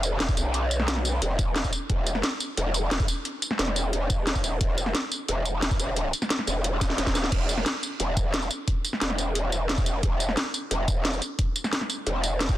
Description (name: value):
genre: dark technical drum and bass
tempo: 177 BPM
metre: 4/4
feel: straight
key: unclear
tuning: A4 = 438 Hz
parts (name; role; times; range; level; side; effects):
- growl bass; bass; 0.0-12.6 s; E1 to B1; -27 LUFS; equal; chorus, overdrive, sidechain pumping
- drum and bass drum kit; drums; 0.0-12.6 s; crash cymbal, hi-hat, snare drum, tambourine; -27 LUFS; equal; none
- electronic kick drum; drums; 0.3-12.6 s; none; -26 LUFS; equal; none
room: light reverb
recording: dense, heavily limited modern master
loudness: -24 LUFS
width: side -14 dB against mid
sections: 0.0-7.3 A section; 7.3-12.6 A section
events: drop 0.0-7.3, 7.3-12.6; drum fill 6.8-7.3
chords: none